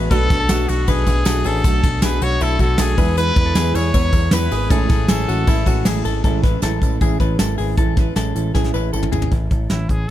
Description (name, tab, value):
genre	jangly indie pop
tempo	157 BPM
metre	4/4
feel	straight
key	A major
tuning	A4 = 440 Hz
part	fingerpicked plugged-in steel-string acoustic guitar	accompaniment	0.0-9.3 s	A2 to F#4	-25 LUFS	right 5 dB	dub echo
part	direct-recorded clean electric guitar	arpeggios	0.0-9.3 s	E4 to C#5	-26 LUFS	left 9 dB	dub echo
part	picked electric bass	bass	0.0-10.1 s	G#1 to E2	-20 LUFS	equal	none
part	clear trumpet	melody	0.1-6.0, 9.7-10.1 s	E4 to C#5	-24 LUFS	equal	dub echo
part	warm upright piano	accompaniment	0.1-6.3 s	G#3 to G#5	-32 LUFS	right 2 dB	none
part	soft brush drum kit	drums	0.1-10.0 s	hi-hat, kick drum, ride cymbal, snare drum, toms	-19 LUFS	equal	none
part	tambourine	percussion	0.5-9.2 s	none	-36 LUFS	right 5 dB	none
room	little or no reverb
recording	echo-heavy mix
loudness	-15 LUFS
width	side -13 dB against mid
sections	0.0-6.2 A section; 6.2-9.3 B section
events	drum fill 8.5-9.3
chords	0.1 Bm7; 3.0 E; 4.7 Amaj7; 9.3 A5